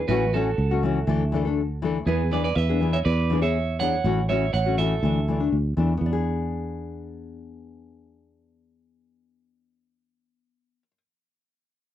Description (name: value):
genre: highlife guitar band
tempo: 121 BPM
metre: 4/4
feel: straight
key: E mixolydian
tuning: A4 = 439 Hz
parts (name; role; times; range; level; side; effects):
- clean electric guitar; melody; 0.0-5.5 s; F#4 to F#5; -27 LUFS; right 6 dB; cassette tape
- fingered electric bass; bass; 0.0-10.8 s; A1 to E2; -24 LUFS; right 1 dB; none
- nylon-string guitar; accompaniment; 0.1-11.0 s; E3 to A4; -27 LUFS; left 6 dB; none
room: moderate studio ambience, RT60 0.5 s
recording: home recording on cassette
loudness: -21 LUFS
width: side -11 dB against mid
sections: 0.0-6.0 A section; 6.0-10.0 B section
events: none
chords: 0.1 A6; 1.1 Dsus2; 2.1 E7; 4.0 A6; 5.0 Dsus2; 6.0 E7